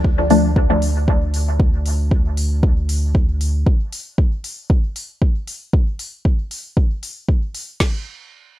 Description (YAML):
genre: dub techno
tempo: 116 BPM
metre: 4/4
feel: swing 53% on 16ths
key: D minor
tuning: A4 = 441 Hz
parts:
  - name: soft dub sub bass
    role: bass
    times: 0.0-3.6 s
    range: D2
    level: -19 LUFS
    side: equal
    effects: tube saturation, sidechain pumping
  - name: deep house drum kit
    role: drums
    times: 0.0-7.9 s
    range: crash cymbal, kick drum, snare drum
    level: -16 LUFS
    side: equal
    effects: small room ambience
  - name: filtered dub chord stab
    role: stabs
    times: 0.3-0.5 s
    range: F3 to D4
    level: -18 LUFS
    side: left 2 dB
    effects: phaser, sidechain pumping, dub echo
  - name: electronic hi-hat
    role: drums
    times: 0.3-7.7 s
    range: none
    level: -31 LUFS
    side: left 2 dB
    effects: small room ambience
room: little or no reverb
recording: none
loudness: -16 LUFS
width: side -14 dB against mid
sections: 0.0-7.8 A section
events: none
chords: none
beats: 0.04 0.56 1.08 | 1.60 2.11 2.63 3.15 | 3.67 4.18 4.70 5.22 | 5.73 6.25 6.77 7.29 | 7.80